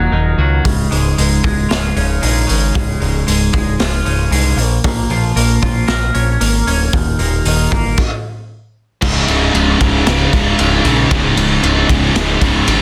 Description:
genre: quiet-loud alternative rock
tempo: 115 BPM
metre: 4/4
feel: straight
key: Db major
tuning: A4 = 439 Hz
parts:
  - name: twelve-string electric guitar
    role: arpeggios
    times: 0.0-8.0 s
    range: Db2 to Bb4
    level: -20 LUFS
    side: equal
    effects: lush chorus
  - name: growling picked electric bass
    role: bass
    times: 0.0-12.8 s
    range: Db1 to Db2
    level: -19 LUFS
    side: equal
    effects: overdrive
  - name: raw garage drum kit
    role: drums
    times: 0.7-12.8 s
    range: crash cymbal, hi-hat, kick drum, ride cymbal, snare drum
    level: -19 LUFS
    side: equal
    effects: none
  - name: overdriven electric guitar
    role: riff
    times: 9.0-12.8 s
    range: Db2 to Db3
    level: -20 LUFS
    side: equal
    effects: none
  - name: scooped high-gain guitar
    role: riff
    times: 9.0-12.8 s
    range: Db2 to Db3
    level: -22 LUFS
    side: equal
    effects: none
  - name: tight distorted guitar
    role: riff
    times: 9.0-12.8 s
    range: Db2 to Db3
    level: -22 LUFS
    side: equal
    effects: distortion
room: little or no reverb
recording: dense, heavily limited modern master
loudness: -14 LUFS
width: mono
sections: 0.0-9.0 A section; 9.0-12.8 B section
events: stop 8.0-9.0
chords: 0.0 Ebm; 0.7 Db; 4.6 Bbm; 6.9 Eb5; 8.0 N.C.; 9.0 Db5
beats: 0.13 | 0.65 1.17 1.70 2.22 | 2.75 3.27 3.79 4.32 | 4.84 5.37 5.89 6.41 | 6.93 7.46 7.98 8.50 | 9.03 9.55 10.07 10.59 | 11.11 11.63 12.15 12.67

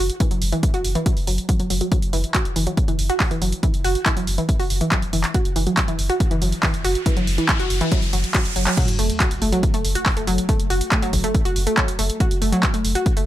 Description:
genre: driving peak-time techno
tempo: 140 BPM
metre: 4/4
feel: straight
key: F# minor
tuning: A4 = 439 Hz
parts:
  - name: wide unison pluck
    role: riff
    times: 0.0-13.2 s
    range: E3 to F#4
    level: -23 LUFS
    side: right 1 dB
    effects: overdrive, sidechain pumping, digital delay
  - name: saturated sub bass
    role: bass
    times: 0.0-13.3 s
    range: F#1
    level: -24 LUFS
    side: equal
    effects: overdrive, sidechain pumping, low-pass filter
  - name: punchy analog drum machine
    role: drums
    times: 0.1-13.3 s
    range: crash cymbal, handclaps, hi-hat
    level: -24 LUFS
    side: right 1 dB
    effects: none
  - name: electronic kick drum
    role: drums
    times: 0.2-13.1 s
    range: none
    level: -21 LUFS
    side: equal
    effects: none
  - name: riser and sub drop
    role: sound effects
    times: 6.4-10.5 s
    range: none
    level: -29 LUFS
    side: equal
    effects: none
room: light reverb, digital ambience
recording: none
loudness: -18 LUFS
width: side -13 dB against mid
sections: 0.0-8.8 A section; 8.8-13.3 B section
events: riser 6.4-8.8; drum fill 8.3-8.8; band accent 8.7; drop 8.8-13.3; impact 8.8-10.5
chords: 0.0 Esus2/F#; 8.8 F#m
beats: | 0.20 0.63 1.06 1.49 | 1.92 2.35 2.77 3.20 | 3.63 4.06 4.49 4.92 | 5.35 5.77 6.20 6.63 | 7.06 7.49 7.92 8.35 | 8.77 9.20 9.63 10.06 | 10.49 10.92 11.35 11.77 | 12.20 12.63 13.06

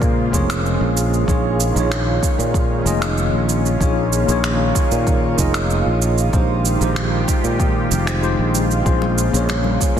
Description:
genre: sunset chillout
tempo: 95 BPM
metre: 4/4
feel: straight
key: unclear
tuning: A4 = 439 Hz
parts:
  - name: bright tine electric piano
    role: accompaniment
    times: 0.0-10.0 s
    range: Ab3 to Eb5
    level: -22 LUFS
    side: moving between left 6 dB and right 5 dB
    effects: medium stereo tremolo, auto-pan, digital delay, shimmer reverb
  - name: lush unison pad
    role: sustained chords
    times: 0.0-10.0 s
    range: Db3 to G4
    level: -23 LUFS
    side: equal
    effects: chorus, phaser, shimmer reverb
  - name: sustaining fretless electric bass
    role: bass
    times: 0.0-10.0 s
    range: F1 to Bb2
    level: -20 LUFS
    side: equal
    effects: none
  - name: electronic cabasa and finger snaps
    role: drums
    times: 0.0-10.0 s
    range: none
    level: -26 LUFS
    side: right 3 dB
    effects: soft clipping on snare
  - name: electronic kick drum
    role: drums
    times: 0.0-9.9 s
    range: none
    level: -20 LUFS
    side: equal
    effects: none
  - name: congas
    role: percussion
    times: 9.0-9.8 s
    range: none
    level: -26 LUFS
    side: left 4 dB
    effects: none
  - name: vibraphone with soft mallets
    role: melody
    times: 9.5-10.0 s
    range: Db5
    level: -27 LUFS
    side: right 7 dB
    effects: shimmer reverb
room: moderate concert hall reverb, RT60 2.0 s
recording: dense, heavily limited modern master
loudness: -15 LUFS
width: side -9 dB against mid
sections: 0.0-10.0 A section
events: none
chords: 0.0 Bbm7; 1.3 Eb9sus4/Bb; 6.3 Fm9/Bb; 8.9 Bbm7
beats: 0.02 0.65 | 1.28 1.91 2.54 3.18 | 3.81 4.44 5.07 5.70 | 6.33 6.96 7.60 8.23 | 8.86 9.49

